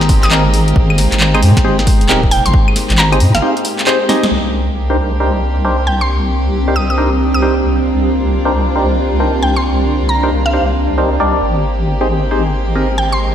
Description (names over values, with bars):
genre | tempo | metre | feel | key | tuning
UK garage, two-step garage | 135 BPM | 4/4 | swing 64% on 16ths | C minor | A4 = 440 Hz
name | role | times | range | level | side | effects
warm studio violin section | sustained chords | 0.0-13.3 s | Bb3 to G4 | -23 LUFS | equal | sidechain pumping
deep soft wobble bass | bass | 0.0-13.3 s | Eb1 to Ab2 | -15 LUFS | equal | chorus
punchy analog drum machine | drums | 0.0-4.3 s | claves, handclaps, hi-hat, snare drum | -17 LUFS | left 1 dB | none
granular cloud pad | texture | 0.0-13.3 s | Ab3 to Bb5 | -20 LUFS | right 1 dB | built-in reverb, sidechain pumping
electronic kick drum | drums | 0.1-2.6 s | none | -13 LUFS | equal | none
mallet-like synth pluck | melody | 0.2-13.2 s | F5 to Eb6 | -20 LUFS | right 1 dB | chorus, analog delay
percussive organ stab | stabs | 0.3-12.9 s | C4 to Eb5 | -18 LUFS | equal | chorus, phaser, analog delay
room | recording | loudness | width
wet lush hall reverb, RT60 1.8 s, digital ambience | dreamy mix soaked in reverb | -11 LUFS | side -9 dB against mid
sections
0.0-4.3 A section; 4.3-13.3 B section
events
break 3.4-4.3; drum fill 4.1; band accent 4.2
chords
0.0 Abmaj7; 4.3 Cm9; 11.4 Abmaj7